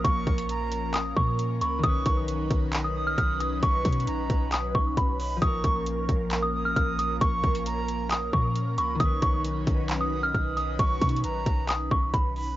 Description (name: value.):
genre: hip hop, trap.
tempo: 134 BPM.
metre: 4/4.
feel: half-time.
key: unclear.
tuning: A4 = 440 Hz.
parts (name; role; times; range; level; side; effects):
small celesta; melody; 0.0-12.3 s; B5 to F6; -29 LUFS; equal; low-pass filter, cassette tape.
breathy silver concert flute; second line; 0.0-12.6 s; Bb5 to D#6; -35 LUFS; right 4 dB; cassette tape, tape echo.
concert harp; accompaniment; 0.0-12.6 s; D#3 to B4; -35 LUFS; left 3 dB; low-pass filter, cassette tape.
airy breathy pad; sustained chords; 0.0-12.5 s; F3 to B4; -33 LUFS; equal; chorus, phaser, cassette tape.
clean 808-style bass; bass; 0.0-12.6 s; Bb1 to B2; -30 LUFS; equal; none.
trap drum kit; drums; 0.0-12.5 s; handclaps, hi-hat, kick drum; -27 LUFS; equal; cassette tape.
room: little or no reverb.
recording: home recording on cassette, nothing above 7.6 kHz.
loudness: -24 LUFS.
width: side -15 dB against mid.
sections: 0.0-12.6 A section.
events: none.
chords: 0.0 Bbm; 1.8 Badd9; 5.4 Bbm; 9.0 Badd9.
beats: | 0.05 0.49 0.94 1.39 | 1.84 2.29 2.73 3.18 | 3.63 4.08 4.52 4.97 | 5.42 5.87 6.31 6.76 | 7.21 7.66 8.11 8.55 | 9.00 9.45 9.90 10.34 | 10.79 11.24 11.69 12.13.